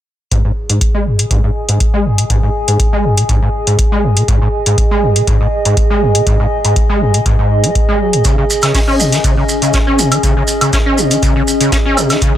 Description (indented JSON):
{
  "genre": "acid house",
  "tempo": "121 BPM",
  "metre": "4/4",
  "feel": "straight",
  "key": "G# minor",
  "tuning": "A4 = 440 Hz",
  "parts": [
    { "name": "overdriven acid bass", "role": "riff", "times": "0.3-12.4 s", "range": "F#2 to C#4", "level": "-15 LUFS", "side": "equal", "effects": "distortion, ensemble chorus, sidechain pumping" },
    { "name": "electronic hi-hat and woodblock", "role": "drums", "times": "0.3-12.3 s", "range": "none", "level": "-17 LUFS", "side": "equal", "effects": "none" },
    { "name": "electronic kick drum", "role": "drums", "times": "0.3-12.3 s", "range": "none", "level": "-15 LUFS", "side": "equal", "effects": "none" },
    { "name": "warbly tape-like pad", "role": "texture", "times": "0.7-12.4 s", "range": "C#4 to G#5", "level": "-17 LUFS", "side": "equal", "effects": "chorus, built-in reverb, sidechain pumping" },
    { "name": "vintage brush drum kit", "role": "drums", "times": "8.2-12.3 s", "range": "hi-hat, shaker, snare drum", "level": "-22 LUFS", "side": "equal", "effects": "sidechain pumping on hats, high-pass filter on hats, high-pass filter on snare, sidechain pumping on perc, high-pass filter on perc, high-pass filter on room" },
    { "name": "maracas", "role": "percussion", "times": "8.2-12.3 s", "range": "none", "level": "-21 LUFS", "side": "right 4 dB", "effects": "none" }
  ],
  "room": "small room ambience",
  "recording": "none",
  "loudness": "-10 LUFS",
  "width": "side -11 dB against mid",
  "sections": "0.3-12.4 A section",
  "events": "filter sweep on acid bass 0.3-12.4",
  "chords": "0.3 G#7(no3); 8.3 C#7(no3)"
}